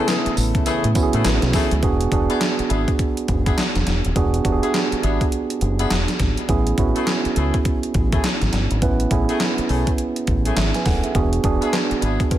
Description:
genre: R&B, new jack swing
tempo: 103 BPM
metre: 4/4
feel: swing 61% on 16ths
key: A major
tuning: A4 = 441 Hz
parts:
  - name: mellow tine electric piano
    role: accompaniment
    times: 0.0-12.4 s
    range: B3 to G#5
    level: -22 LUFS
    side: right 4 dB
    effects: none
  - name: sweeping resonant pad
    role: sustained chords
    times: 0.0-1.8 s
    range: C#3 to E4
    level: -30 LUFS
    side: left 2 dB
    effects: chorus
  - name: warm horn section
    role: stabs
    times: 0.0-12.2 s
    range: A3 to G#4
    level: -28 LUFS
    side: left 4 dB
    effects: ping-pong delay
  - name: gated 80s digital drum machine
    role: drums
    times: 0.1-12.4 s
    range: handclaps, hi-hat, kick drum, snare drum, tambourine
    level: -22 LUFS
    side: equal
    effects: gated reverb, gated reverb snare, overdrive
  - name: cowbell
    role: percussion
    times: 0.1-1.4, 11.2-12.4 s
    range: none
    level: -34 LUFS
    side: left 9 dB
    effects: none
  - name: deep dub fingered electric bass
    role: bass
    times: 0.3-12.2 s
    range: D#1 to A2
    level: -21 LUFS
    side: equal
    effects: none
room: digital ambience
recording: none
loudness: -17 LUFS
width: side -12 dB against mid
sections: 0.0-1.8 A section; 1.8-12.4 B section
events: none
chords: 0.0 Amaj7; 1.8 E7; 6.5 Amaj7; 11.1 E7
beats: 0.08 0.66 1.25 | 1.83 2.41 2.99 3.58 | 4.16 4.74 5.32 5.91 | 6.49 7.07 7.65 8.23 | 8.82 9.40 9.98 10.56 | 11.15 11.73 12.31

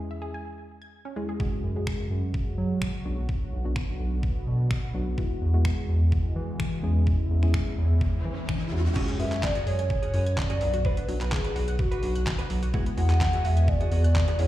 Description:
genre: dance-pop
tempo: 127 BPM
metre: 4/4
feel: straight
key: unclear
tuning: A4 = 439 Hz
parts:
  - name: soft round pluck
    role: accompaniment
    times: 0.0-14.5 s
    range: E2 to B4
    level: -36 LUFS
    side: left 2 dB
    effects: chorus, sidechain pumping, slapback echo
  - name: wide unison pluck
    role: arpeggios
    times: 0.1-1.4, 9.0-14.5 s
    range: D3 to G#6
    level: -40 LUFS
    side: left 1 dB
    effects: sidechain pumping, tape echo, slapback echo
  - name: sweeping resonant pad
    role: sustained chords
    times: 1.4-8.9, 12.7-14.5 s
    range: C#3 to F#4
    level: -38 LUFS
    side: equal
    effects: chorus, sidechain pumping
  - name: detuned 8-bit digital drum machine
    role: drums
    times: 1.4-14.5 s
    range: crash cymbal, finger snaps, handclaps, hi-hat, kick drum, snare drum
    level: -29 LUFS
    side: equal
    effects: none
  - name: round analog bass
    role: bass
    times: 1.6-14.5 s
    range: B1 to F#3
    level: -25 LUFS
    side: equal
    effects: sidechain pumping
  - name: riser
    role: sound effects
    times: 7.6-9.0 s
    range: none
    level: -37 LUFS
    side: equal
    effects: none
  - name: direct-recorded clean electric guitar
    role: riff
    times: 9.0-14.5 s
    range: B3 to B4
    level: -38 LUFS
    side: right 6 dB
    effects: lush chorus, slapback echo
  - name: hollow clarinet-like synth lead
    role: melody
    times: 9.2-14.5 s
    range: F#4 to F#5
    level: -31 LUFS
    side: left 1 dB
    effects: chorus, tape echo, slapback echo
room: light reverb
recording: live gig heard through the venue's PA, recital hall reverb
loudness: -24 LUFS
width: side -14 dB against mid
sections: 0.0-9.0 A section; 9.0-14.5 B section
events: riser 7.6-9.0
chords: 0.0 C#m/E; 1.4 F#sus2; 3.1 Bm; 5.2 Eadd9; 6.8 C#m; 9.0 F#sus2; 10.6 Bm; 12.7 Eadd9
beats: 0.46 0.93 | 1.40 1.87 2.34 2.82 | 3.29 3.76 4.23 4.71 | 5.18 5.65 6.12 6.60 | 7.07 7.54 8.01 8.49 | 8.96 9.43 9.90 10.38 | 10.85 11.32 11.79 12.27 | 12.74 13.21 13.68 14.15

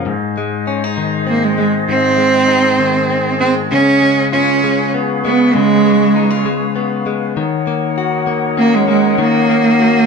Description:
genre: six-eight pop ballad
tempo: 66 BPM (dotted quarters)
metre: 6/8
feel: straight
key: unclear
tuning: A4 = 441 Hz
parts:
  - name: direct-recorded clean electric guitar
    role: accompaniment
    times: 0.0-10.1 s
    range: G#2 to F#4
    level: -18 LUFS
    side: left 7 dB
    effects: none
  - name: small flute group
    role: sustained chords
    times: 0.0-10.1 s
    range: C#4 to F#5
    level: -20 LUFS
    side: left 2 dB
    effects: none
  - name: bright cello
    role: melody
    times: 1.3-10.1 s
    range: G#3 to C#4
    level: -12 LUFS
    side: right 3 dB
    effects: none
room: moderate large studio reverb, RT60 1.2 s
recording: band playing live in one room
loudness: -12 LUFS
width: side -5 dB against mid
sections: 0.0-10.1 A section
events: none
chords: 0.1 G#; 3.7 C#7; 7.4 D#m7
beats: | 0.07 0.98 | 1.89 2.80 | 3.71 4.63 | 5.54 6.45 | 7.36 8.27 | 9.19

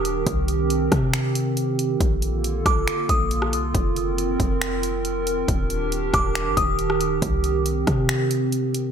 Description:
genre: hip hop, atmospheric cloud-rap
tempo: 138 BPM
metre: 4/4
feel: half-time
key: C dorian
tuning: A4 = 438 Hz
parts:
  - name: warbly tape-like pad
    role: sustained chords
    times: 0.0-8.9 s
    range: D3 to Bb4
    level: -24 LUFS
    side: right 3 dB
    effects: chorus, built-in reverb, sidechain pumping
  - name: warm 808-style bass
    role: bass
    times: 0.0-8.9 s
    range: Eb1 to C3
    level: -25 LUFS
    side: left 1 dB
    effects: none
  - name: techno drum kit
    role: drums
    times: 0.1-8.8 s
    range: finger snaps, hi-hat, kick drum, rim click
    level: -25 LUFS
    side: equal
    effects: none
  - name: glassy synth bell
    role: melody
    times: 2.7-3.3, 6.1-6.8 s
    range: D6 to Eb6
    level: -26 LUFS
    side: equal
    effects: chorus, low-pass filter, ping-pong delay
room: light reverb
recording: none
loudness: -20 LUFS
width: side -8 dB against mid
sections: 0.0-8.9 A section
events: none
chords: 0.3 Cm7; 2.0 Bbmaj7; 3.7 F7sus4; 5.5 Ebmaj7; 7.2 Cm7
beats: | 0.27 0.70 1.14 1.57 | 2.01 2.44 2.88 3.31 | 3.75 4.18 4.61 5.05 | 5.48 5.92 6.35 6.79 | 7.22 7.66 8.09 8.53

